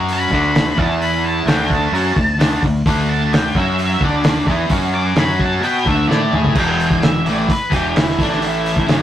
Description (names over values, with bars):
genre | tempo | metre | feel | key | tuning
garage rock duo or trio | 130 BPM | 4/4 | straight | unclear | A4 = 440 Hz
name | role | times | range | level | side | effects
crunchy overdriven guitar | riff | 0.0-9.0 s | E2 to B4 | -18 LUFS | equal | none
growling fingered electric bass | bass | 0.0-9.0 s | E1 to B2 | -22 LUFS | equal | overdrive
octave-fuzz lead guitar | melody | 0.1-8.9 s | D4 to D6 | -21 LUFS | equal | distortion
cloth-damped thuddy drum kit | drums | 0.1-9.0 s | crash cymbal, hi-hat, kick drum, snare drum, toms | -18 LUFS | equal | none
room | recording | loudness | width
light reverb | rough rehearsal-room recording, tube saturation | -14 LUFS | side -11 dB against mid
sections
0.0-6.6 A section; 6.6-9.0 B section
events
lead electric guitar solo 0.0-6.6; drum fill 6.1-6.6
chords
0.3 D5; 0.8 E5; 1.5 D5; 3.6 F#5; 4.0 D5; 4.7 F#5; 5.6 D5; 6.1 A5; 6.6 E5; 8.2 A5